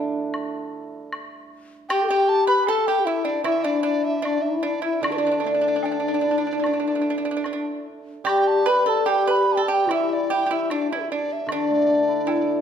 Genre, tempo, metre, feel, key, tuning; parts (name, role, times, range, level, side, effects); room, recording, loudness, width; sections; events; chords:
chinese traditional, Chinese chamber ensemble; 76 BPM; 4/4; rubato; A4 = 440 Hz
hammered dulcimer; accompaniment; 0.0-12.6 s; D3 to A4; -27 LUFS; right 4 dB
woodblock; percussion; 0.3-12.5 s; -33 LUFS; left 1 dB
mellow hollow large dizi; melody; 1.9-12.6 s; D5 to B5; -24 LUFS; left 1 dB
breathy low xiao; second line; 1.9-12.6 s; D4 to D5; -24 LUFS; left 5 dB
pipa; second line; 1.9-12.6 s; D4 to B4; -27 LUFS; right 7 dB
wet recital hall reverb, RT60 1.6 s; -19 LUFS; side -8 dB against mid
0.0-12.6 A section